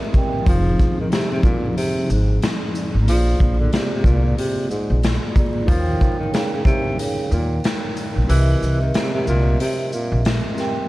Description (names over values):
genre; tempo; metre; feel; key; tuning
hip hop, boom-bap hip-hop; 92 BPM; 4/4; swing 60% on 16ths; unclear; A4 = 443 Hz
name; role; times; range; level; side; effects
vibraphone with soft mallets; accompaniment; 0.0-10.9 s; F3 to G5; -26 LUFS; right 1 dB; cassette tape
raw garage drum kit; drums; 0.1-10.8 s; hi-hat, kick drum, shaker, snare drum; -21 LUFS; equal; none
breathy tenor saxophone; melody; 0.5-10.2 s; Ab2 to F3; -24 LUFS; equal; none
upright bass; bass; 0.5-10.4 s; F1 to Eb2; -18 LUFS; equal; none
room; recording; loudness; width
little or no reverb; dark, warm production, vinyl crackle; -17 LUFS; side -18 dB against mid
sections
0.0-10.9 A section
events
break 0.0-0.5; kick muted 8.3-10.9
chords
0.5 Fm7; 3.1 Bb7; 5.7 Eb7; 8.3 C7